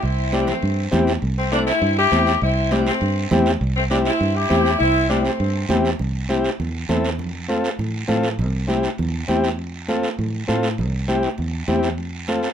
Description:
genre	latin, cumbia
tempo	201 BPM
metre	4/4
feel	straight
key	C major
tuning	A4 = 440 Hz
part	warm saxophone section	melody	0.0-5.7 s	G3 to G4	-20 LUFS	left 2 dB	none
part	fingered electric bass	bass	0.0-12.5 s	C2 to A2	-23 LUFS	right 1 dB	none
part	congas	percussion	0.0-12.4 s	none	-27 LUFS	equal	none
part	guiro	percussion	0.0-12.5 s	none	-32 LUFS	right 5 dB	none
part	combo organ	accompaniment	0.3-12.5 s	C4 to A4	-21 LUFS	left 1 dB	none
room	moderate studio ambience, RT60 0.5 s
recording	minimal, uncompressed stereo recording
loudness	-18 LUFS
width	side -8 dB against mid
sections	0.0-6.0 A section; 6.0-12.5 B section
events	none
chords	0.0 C; 7.2 F; 8.4 C; 9.6 F; 10.8 C; 12.0 F

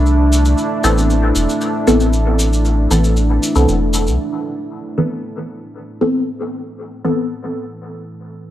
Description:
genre	dub techno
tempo	116 BPM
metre	4/4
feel	straight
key	A minor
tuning	A4 = 439 Hz
part	deep dark ambient pad	sustained chords	0.0-8.5 s	A3 to B4	-21 LUFS	right 1 dB	chorus, built-in reverb
part	soft dub sub bass	bass	0.0-4.2 s	E1 to C2	-14 LUFS	equal	tube saturation
part	tube shaker	percussion	0.1-4.2 s	none	-25 LUFS	left 1 dB	none
part	filtered dub chord stab	stabs	0.8-7.3 s	E3 to A4	-18 LUFS	equal	phaser, dub echo
room	light reverb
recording	dry, gritty hardware recording, cassette tape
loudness	-14 LUFS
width	side -12 dB against mid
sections	0.0-4.2 A section; 4.2-8.5 B section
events	filter sweep on synth stab 4.2-8.5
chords	0.0 Amadd9

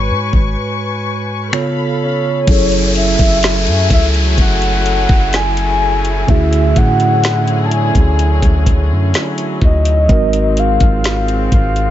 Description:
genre	contemporary R&B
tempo	63 BPM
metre	4/4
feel	straight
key	F# minor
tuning	A4 = 441 Hz
part	mellow tine electric piano	accompaniment	0.0-11.9 s	G#2 to C#5	-19 LUFS	right 3 dB	medium stereo tremolo
part	dark studio string section	sustained chords	0.0-11.9 s	D3 to C#6	-22 LUFS	left 4 dB	sidechain pumping
part	long sustained 808-style bass	bass	0.0-11.9 s	F#1 to A2	-16 LUFS	equal	none
part	smooth R&B drum kit	drums	0.3-11.9 s	finger snaps, hi-hat, kick drum, snare drum	-14 LUFS	equal	none
part	soft octave-layered synth lead	melody	2.0-11.9 s	C#5 to A5	-18 LUFS	left 1 dB	chorus, phaser
part	downlifter	sound effects	2.5-10.1 s	none	-23 LUFS	equal	none
room	digital ambience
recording	nothing above 7.8 kHz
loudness	-11 LUFS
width	side -12 dB against mid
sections	0.0-2.5 A section; 2.5-11.9 B section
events	break 0.6-2.5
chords	0.0 C#7sus4/G#; 1.5 C#7b13; 2.5 F#m9; 6.3 Dmaj9#11; 10.1 G#13

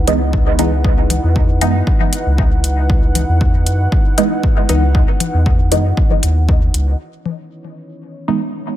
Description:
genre	dub techno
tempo	117 BPM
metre	4/4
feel	straight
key	C# minor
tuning	A4 = 441 Hz
part	dark analog pad	sustained chords	0.0-8.8 s	D#4 to F#5	-25 LUFS	right 1 dB	chorus, sidechain pumping
part	soft dub sub bass	bass	0.0-6.9 s	C#2 to F#2	-15 LUFS	equal	sidechain pumping
part	filtered dub chord stab	stabs	0.1-8.4 s	E3 to D#4	-19 LUFS	right 1 dB	phaser, sidechain pumping, dub echo
part	electronic hi-hat	drums	0.1-6.8 s	none	-21 LUFS	left 1 dB	overdrive, low-pass filter on hats, low-pass filter on room
part	electronic kick drum	drums	0.3-6.6 s	none	-15 LUFS	equal	none
part	congas and bongos	percussion	1.1-7.4 s	none	-26 LUFS	left 6 dB	sidechain pumping on perc, dub echo
room	digital ambience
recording	none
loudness	-12 LUFS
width	side -12 dB against mid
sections	0.0-7.0 A section; 7.0-8.8 B section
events	filter sweep on synth stab 0.0-7.0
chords	0.0 C#m9

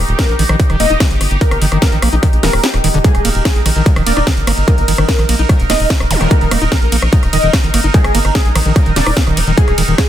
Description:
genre	psychedelic trance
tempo	147 BPM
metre	4/4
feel	straight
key	Eb major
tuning	A4 = 440 Hz
part	bubbling stepped-filter texture	sustained chords	0.0-10.1 s	Eb4 to Bb4	-22 LUFS	right 2 dB	chorus, built-in reverb, sidechain pumping
part	round analog bass	bass	0.0-9.9 s	Eb1 to Bb1	-16 LUFS	equal	tube saturation
part	techno drum kit	drums	0.1-10.1 s	hi-hat, ride cymbal, rim click, snare drum	-18 LUFS	left 1 dB	studio reverb
part	wide unison lead	melody	0.2-10.1 s	Ab4 to Eb5	-21 LUFS	left 1 dB	phaser, sidechain pumping, dub echo
part	overdriven acid bass	riff	0.2-10.0 s	D3 to Fb4	-20 LUFS	moving between left 2 dB and right 4 dB	auto-pan, sidechain pumping, dub echo
part	electronic kick drum	drums	0.2-10.1 s	none	-13 LUFS	equal	distortion, studio reverb
part	zap	sound effects	6.1-6.2 s	none	-21 LUFS	left 1 dB	none
room	little or no reverb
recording	dense, heavily limited modern master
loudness	-10 LUFS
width	side -11 dB against mid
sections	0.0-10.1 A section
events	kick drops out 2.6-3.0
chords	0.0 Eb5

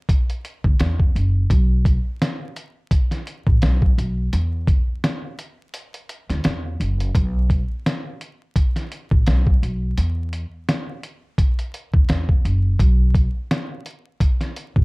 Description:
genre	hip hop, boom-bap hip-hop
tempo	85 BPM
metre	4/4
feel	swing 57% on 16ths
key	unclear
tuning	A4 = 440 Hz
part	dusty soul sampler-style drum kit	drums	0.1-14.8 s	hi-hat, kick drum, snare drum	-19 LUFS	equal	none
part	upright bass	bass	0.6-14.8 s	F#1 to E2	-20 LUFS	equal	none
room	little or no reverb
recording	dark, warm production, vinyl crackle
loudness	-18 LUFS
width	side -28 dB against mid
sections	0.0-14.8 A section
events	break 5.7-7.1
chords	none

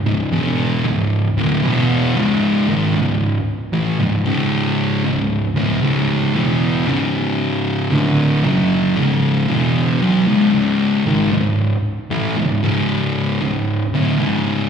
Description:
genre	metal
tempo	57 BPM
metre	4/4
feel	straight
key	C# phrygian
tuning	A4 = 440 Hz
part	thick fuzz guitar	solo	0.1-14.7 s	C#2 to F#3	-15 LUFS	equal	distortion, slapback echo
room	light reverb, digital ambience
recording	live gig heard through the venue's PA, recital hall reverb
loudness	-15 LUFS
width	side -7 dB against mid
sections	0.0-10.5 A section; 10.5-14.7 B section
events	none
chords	0.0 C#m; 10.5 C#5

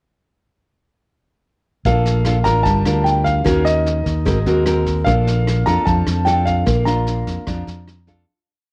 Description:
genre	bossa nova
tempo	150 BPM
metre	4/4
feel	straight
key	Bb major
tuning	A4 = 441 Hz
part	warm baby grand piano	melody	1.9-8.0 s	Eb5 to Bb5	-23 LUFS	equal	none
part	nylon-string guitar	accompaniment	1.9-8.3 s	Eb3 to Bb4	-23 LUFS	equal	none
part	fingered electric bass	bass	1.9-8.2 s	G1 to F2	-21 LUFS	equal	none
part	vintage brush drum kit	drums	1.9-8.1 s	kick drum, rim click, snare drum	-28 LUFS	equal	none
room	light reverb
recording	worn, warbling old tape, cassette tape, warbly pitch drift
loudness	-17 LUFS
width	mono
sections	1.9-8.3 A section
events	fade-out 6.7-8.3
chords	1.9 Bbmaj7; 2.7 Gm7; 3.5 Ebm7; 4.3 Ab9; 5.1 Bbmaj7

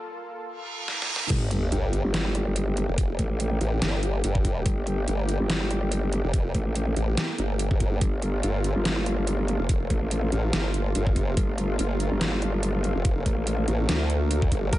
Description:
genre	heavy wobble dubstep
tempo	143 BPM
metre	4/4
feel	swing 55% on 16ths, half-time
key	G minor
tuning	A4 = 440 Hz
part	lush unison pad	sustained chords	0.0-14.8 s	A3 to A4	-34 LUFS	equal	chorus, sidechain pumping
part	reverse cymbal and sub drop	sound effects	0.6-3.0 s	none	-31 LUFS	right 1 dB	none
part	dubstep drum kit	drums	0.9-14.8 s	crash cymbal, hi-hat, snare drum	-30 LUFS	equal	none
part	growl bass	bass	1.3-14.8 s	G1 to A1	-25 LUFS	equal	chorus, overdrive
part	electronic kick drum	drums	1.3-14.8 s	none	-25 LUFS	equal	none
part	formant-sweep wobble bass	bass	1.7-14.7 s	F1 to D2	-25 LUFS	equal	chorus, overdrive
part	bright grand piano	melody	14.7-14.8 s	Bb4	-38 LUFS	equal	vintage 12-bit sampler grit, tape echo
room	little or no reverb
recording	high-pass filter, nothing above 10.4 kHz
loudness	-23 LUFS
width	side -15 dB against mid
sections	0.0-1.3 A section; 1.3-14.8 B section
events	break 0.0-1.3; build-up 0.0-1.3; filter sweep 0.0-1.3; reverse cymbal 0.6-1.3; drum fill 0.9-1.3; drop 1.3-14.8; impact 1.3-3.0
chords	0.0 Gmadd9 (rootless); 1.3 Gmadd9

